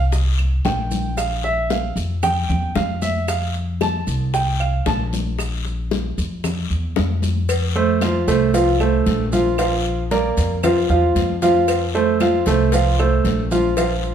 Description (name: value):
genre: latin, Cuban son and guajira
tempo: 114 BPM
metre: 4/4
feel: straight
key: F major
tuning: A4 = 439 Hz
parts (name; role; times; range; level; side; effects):
- upright bass; bass; 0.0-14.1 s; Bb1 to F2; -21 LUFS; equal; none
- bongos and cowbell; percussion; 0.1-14.0 s; none; -28 LUFS; left 5 dB; none
- congas; percussion; 0.1-14.1 s; none; -28 LUFS; left 2 dB; none
- guiro; percussion; 0.1-14.1 s; none; -35 LUFS; left 7 dB; none
- maracas; percussion; 0.1-14.1 s; none; -37 LUFS; right 4 dB; none
- claves; percussion; 0.4-14.0 s; none; -35 LUFS; right 4 dB; none
- clear grand piano; arpeggios; 0.6-14.1 s; F3 to A5; -19 LUFS; right 2 dB; none
room: moderate large studio reverb, RT60 1.1 s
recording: heard from further back in the room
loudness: -17 LUFS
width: side -8 dB against mid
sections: 0.0-7.5 A section; 7.5-14.1 B section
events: grand piano solo 0.0-7.5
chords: 0.0 N.C.; 1.2 Bb5; 3.3 F; 5.4 Bb5; 7.5 F; 9.6 Bb; 11.7 F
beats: 0.12 0.65 | 1.18 1.71 2.23 2.76 | 3.29 3.81 4.34 4.86 | 5.39 5.92 6.44 6.96 | 7.49 8.01 8.54 9.06 | 9.59 10.11 10.63 11.16 | 11.68 12.20 12.73 13.25 | 13.77